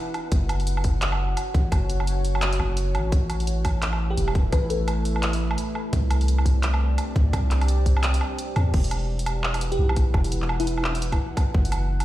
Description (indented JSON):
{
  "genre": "half-time drum and bass",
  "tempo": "171 BPM",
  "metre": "4/4",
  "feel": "swing 60% on 16ths, half-time",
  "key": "E minor",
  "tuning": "A4 = 440 Hz",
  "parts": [
    { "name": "deep dark ambient pad", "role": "sustained chords", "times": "0.0-12.0 s", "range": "A3 to F#5", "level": "-31 LUFS", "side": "equal", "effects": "chorus, built-in reverb, sidechain pumping" },
    { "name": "drum and bass drum kit", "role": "drums", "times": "0.1-12.0 s", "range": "crash cymbal, handclaps, hi-hat, woodblock", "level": "-30 LUFS", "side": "right 2 dB", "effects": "studio reverb" },
    { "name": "long sustained 808-style bass", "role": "bass", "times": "0.3-12.0 s", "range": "E1 to E2", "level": "-23 LUFS", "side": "equal", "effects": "none" },
    { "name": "electronic kick drum", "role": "drums", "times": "0.3-11.6 s", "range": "none", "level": "-22 LUFS", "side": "equal", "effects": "studio reverb" },
    { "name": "bell-like FM electric piano", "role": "melody", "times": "4.1-5.2, 9.7-10.9 s", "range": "E4 to B4", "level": "-31 LUFS", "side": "left 1 dB", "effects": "chorus, phaser, tape echo" }
  ],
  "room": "light reverb, digital ambience",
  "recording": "played on a big sound system in a bare room, stone room reverb",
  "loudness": "-21 LUFS",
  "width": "side -15 dB against mid",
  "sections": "0.0-8.7 A section; 8.7-12.0 A section",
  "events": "drop 0.0-8.7, 8.7-12.0; break 8.0-8.7",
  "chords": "0.3 F#5; 3.1 A5; 5.9 C5; 8.7 E5; 11.5 F#5"
}